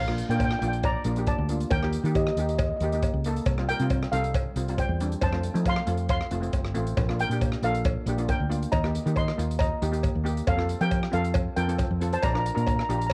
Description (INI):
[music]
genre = calypso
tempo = 137 BPM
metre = 4/4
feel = straight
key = Bb major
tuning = A4 = 440 Hz
[part]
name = steel pan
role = melody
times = 0.0-13.1 s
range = G4 to C6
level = -32 LUFS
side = equal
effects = none
[part]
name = fingered electric bass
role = bass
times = 0.0-13.1 s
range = F1 to F3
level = -30 LUFS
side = equal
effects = none
[part]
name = steel pan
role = accompaniment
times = 0.1-13.1 s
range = G3 to Bb4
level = -34 LUFS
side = equal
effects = cassette tape
[part]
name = swinging big-band drum kit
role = drums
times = 0.1-13.1 s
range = hi-hat, kick drum, rim click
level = -32 LUFS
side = equal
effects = cassette tape
[part]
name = cowbell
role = percussion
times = 0.4-13.1 s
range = none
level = -37 LUFS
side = equal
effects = none
[sound]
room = light reverb, small room ambience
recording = home recording on cassette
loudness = -26 LUFS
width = mono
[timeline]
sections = 0.0-13.1 A section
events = none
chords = 0.0 Bb6; 1.7 Eb; 3.5 Csus4; 5.2 F; 7.0 Bb6; 8.7 Eb; 10.5 F; 12.2 Bb